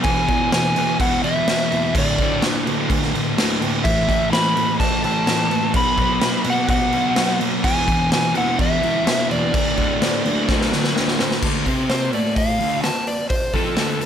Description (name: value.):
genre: garage rock duo or trio.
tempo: 127 BPM.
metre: 4/4.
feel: straight.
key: D lydian.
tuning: A4 = 440 Hz.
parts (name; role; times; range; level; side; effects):
overdriven slide guitar; melody; 0.0-14.1 s; A4 to B5; -22 LUFS; equal; none.
fuzz guitar; riff; 0.0-14.1 s; D2 to C4; -21 LUFS; equal; distortion.
raw garage drum kit; drums; 0.0-14.1 s; crash cymbal, hi-hat, kick drum, snare drum; -21 LUFS; equal; none.
room: light reverb, studio ambience.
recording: none.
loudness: -17 LUFS.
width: side -9 dB against mid.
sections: 0.0-11.4 A section; 11.4-14.1 B section.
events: drum fill 10.5-11.4; electric slide guitar solo 11.4-14.1.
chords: 0.1 E; 2.0 D5; 3.8 A5; 5.7 B5; 7.6 E; 9.5 D5.